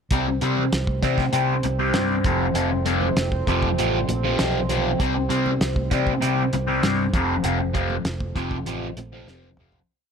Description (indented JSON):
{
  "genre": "psychedelic rock",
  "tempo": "98 BPM",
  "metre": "4/4",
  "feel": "straight",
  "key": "unclear",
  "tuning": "A4 = 438 Hz",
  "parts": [
    { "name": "mellow French horn section", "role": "sustained chords", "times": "0.1-9.9 s", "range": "Eb3 to C5", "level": "-32 LUFS", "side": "right 6 dB", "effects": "none" },
    { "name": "fuzz guitar", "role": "riff", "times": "0.1-9.8 s", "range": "F2 to C4", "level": "-23 LUFS", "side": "left 2 dB", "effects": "distortion, phaser" },
    { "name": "fingered electric bass", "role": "bass", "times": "0.1-9.8 s", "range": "F1 to C3", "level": "-26 LUFS", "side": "equal", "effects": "none" },
    { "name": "analog drone", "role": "drone", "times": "0.7-9.9 s", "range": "C2 to C4", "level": "-32 LUFS", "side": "right 1 dB", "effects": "chorus, phaser" },
    { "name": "cloth-damped thuddy drum kit", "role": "drums", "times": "0.1-9.9 s", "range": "hi-hat, kick drum, snare drum, toms", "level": "-26 LUFS", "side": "equal", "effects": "none" },
    { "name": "congas", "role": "percussion", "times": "0.6-9.7 s", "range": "none", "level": "-38 LUFS", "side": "right 6 dB", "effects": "none" }
  ],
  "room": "small room ambience",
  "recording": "none",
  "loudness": "-20 LUFS",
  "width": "side -6 dB against mid",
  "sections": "0.1-9.9 groove",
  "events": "fade-out 7.4-9.9; drum fill 9.3-9.9",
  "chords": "0.1 Cm; 2.2 F; 5.0 Cm; 7.1 F"
}